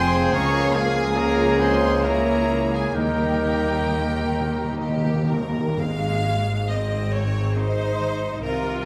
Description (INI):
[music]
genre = classical, slow romantic movement for symphony orchestra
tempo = 58-73 BPM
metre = 3/4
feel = rubato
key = Ab major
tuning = A4 = 440 Hz
[part]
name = rich chamber violin section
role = melody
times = 0.0-8.8 s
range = G4 to Db6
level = -35 LUFS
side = equal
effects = none
[part]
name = clear chamber violin section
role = second line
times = 0.0-8.8 s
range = G4 to F5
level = -32 LUFS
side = equal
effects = none
[part]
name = mellow clarinet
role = second line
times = 0.0-5.2 s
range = Bb4 to G5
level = -31 LUFS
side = equal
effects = none
[part]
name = silver concert flute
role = second line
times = 0.0-4.8 s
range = Eb5 to Bb5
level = -34 LUFS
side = equal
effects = none
[part]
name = warm oboe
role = second line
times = 0.0-4.8 s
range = G4 to Db5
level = -33 LUFS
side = equal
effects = none
[part]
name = rich chamber viola section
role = accompaniment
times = 0.0-8.9 s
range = Ab3 to Ab4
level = -33 LUFS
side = equal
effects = none
[part]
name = clear trombone section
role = sustained chords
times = 0.0-5.4 s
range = Eb3 to C4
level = -34 LUFS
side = equal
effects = none
[part]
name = dark French horn section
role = sustained chords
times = 0.0-4.8 s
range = G3 to Db4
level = -33 LUFS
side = equal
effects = none
[part]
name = concert harp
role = arpeggios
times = 0.0-8.9 s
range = Ab2 to C6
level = -33 LUFS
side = equal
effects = none
[part]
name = bright trumpet section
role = stabs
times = 0.0-5.4 s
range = Ab4 to Bb4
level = -30 LUFS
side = equal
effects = none
[part]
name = rich chamber cello section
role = bass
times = 0.0-8.9 s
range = Db2 to C3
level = -32 LUFS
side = equal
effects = none
[part]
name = rich chamber double bass section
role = bass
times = 0.0-8.9 s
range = F1 to Eb2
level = -29 LUFS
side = equal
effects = none
[part]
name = timpani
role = percussion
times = 2.9-7.1 s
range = Ab2 to Eb3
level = -30 LUFS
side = equal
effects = none
[sound]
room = wet recital hall reverb, RT60 1.6 s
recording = none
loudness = -22 LUFS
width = mono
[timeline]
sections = 0.0-5.8 A section; 5.8-8.9 B section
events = timpani fill 3.0-5.8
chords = 0.3 Bbm7/Db; 2.0 Bbm7b5/Db; 3.0 Eb; 5.8 Ab